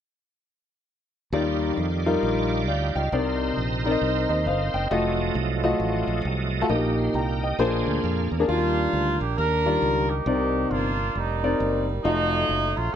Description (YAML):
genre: uptempo gospel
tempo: 134 BPM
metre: 4/4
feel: swing 62% on 8ths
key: Eb major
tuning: A4 = 436 Hz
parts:
  - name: warm concert grand piano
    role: accompaniment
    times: 1.3-12.6 s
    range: Bb2 to Bb5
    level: -25 LUFS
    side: left 3 dB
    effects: none
  - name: bright tonewheel organ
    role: sustained chords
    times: 1.3-8.7 s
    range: F3 to C6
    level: -30 LUFS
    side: right 6 dB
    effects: slow rotary speaker, overdrive, chorus vibrato
  - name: fingered electric bass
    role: bass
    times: 1.3-12.9 s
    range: F1 to F2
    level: -27 LUFS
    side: right 1 dB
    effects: none
  - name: mellow horn section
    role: melody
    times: 8.5-12.9 s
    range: Gb3 to Bb4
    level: -24 LUFS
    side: right 2 dB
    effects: slapback echo
room: light reverb, small room ambience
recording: none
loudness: -22 LUFS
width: side -9 dB against mid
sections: 1.3-8.5 A section; 8.5-13.0 B section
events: grand piano fill 4.0-4.9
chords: 1.3 Ebmaj9; 3.1 Cm9; 4.9 F7b9; 6.7 Eb/Bb; 7.6 Bb9; 8.5 Ebmaj9; 10.3 Cm9; 12.0 F7b9